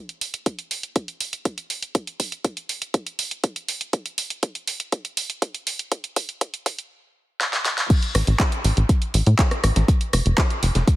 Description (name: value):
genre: progressive house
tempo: 121 BPM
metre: 4/4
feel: straight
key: unclear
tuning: A4 = 441 Hz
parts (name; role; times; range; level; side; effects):
- pop drum kit; drums; 0.1-11.0 s; crash cymbal, handclaps, hi-hat, rim click, snare drum; -25 LUFS; right 1 dB; sidechain pumping on hats, high-pass filter on hats, high-pass filter on snare, sidechain pumping on cymbals, high-pass filter on cymbals
- electronic kick drum; drums; 0.5-11.0 s; none; -20 LUFS; equal; high-pass filter on kick
- breakbeat sampler-style drum kit; drums; 7.9-11.0 s; hi-hat, snare drum; -33 LUFS; equal; sidechain pumping on hats, high-pass filter on hats, low-pass filter on hats, high-pass filter on snare, low-pass filter on snare, high-pass filter on room, low-pass filter on room
- tight sequencer bass; bass; 8.1-10.8 s; F1 to A2; -18 LUFS; equal; sidechain pumping
room: little or no reverb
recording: heavily compressed radio sound, high-pass filter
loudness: -21 LUFS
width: side -16 dB against mid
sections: 0.0-7.9 A section; 7.9-11.0 B section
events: build-up 0.0-7.9; drum fill 3.9-6.9, 7.4-7.9; drop 7.9-11.0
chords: none